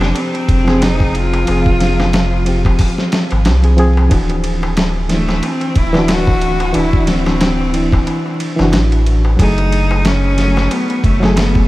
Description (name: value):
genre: trip hop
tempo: 91 BPM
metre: 4/4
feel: swing 57% on 16ths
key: unclear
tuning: A4 = 440 Hz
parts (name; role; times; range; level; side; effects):
- bright cello; melody; 0.0-11.7 s; A3 to F#4; -20 LUFS; left 1 dB; tape echo
- reed electric piano; accompaniment; 0.0-11.7 s; E3 to Ab4; -18 LUFS; equal; tremolo, tape echo
- warm sub bass; bass; 0.0-11.7 s; D1 to C2; -15 LUFS; equal; none
- dusty soul sampler-style drum kit; drums; 0.0-11.7 s; hi-hat, kick drum, ride cymbal, snare drum; -17 LUFS; equal; overdrive
- darbuka; percussion; 0.0-11.7 s; none; -28 LUFS; left 1 dB; none
room: moderate huge ambient reverb, RT60 8.1 s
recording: dreamy mix soaked in reverb, vinyl crackle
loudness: -12 LUFS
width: side -18 dB against mid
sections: 0.0-11.7 A section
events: none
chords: 0.0 Fm; 4.1 Dadd9; 9.4 F#madd9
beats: 0.16 0.82 | 1.48 2.14 2.80 3.46 | 4.11 4.77 5.43 6.09 | 6.75 7.41 8.07 8.73 | 9.39 10.05 10.71 11.37